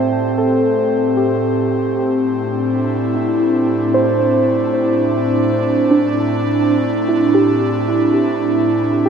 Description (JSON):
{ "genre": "ambient", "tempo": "76 BPM", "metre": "3/4", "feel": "straight", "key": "unclear", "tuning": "A4 = 440 Hz", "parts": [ { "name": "airy breathy pad", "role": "sustained chords", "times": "0.0-9.1 s", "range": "A2 to G4", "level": "-16 LUFS", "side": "equal", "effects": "chorus" }, { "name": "muted felt-like synth keys", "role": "arpeggios", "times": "0.0-9.1 s", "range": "D4 to A5", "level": "-17 LUFS", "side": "right 1 dB", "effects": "chorus, analog delay" } ], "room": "wet plate reverb, RT60 2.4 s", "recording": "echo-heavy mix", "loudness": "-14 LUFS", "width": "side -7 dB against mid", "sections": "0.0-9.1 A section", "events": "none", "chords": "0.0 Am7", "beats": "0.40 1.19 | 1.98 2.77 3.56 | 4.34 5.13 5.92 | 6.71 7.50 8.29 | 9.08" }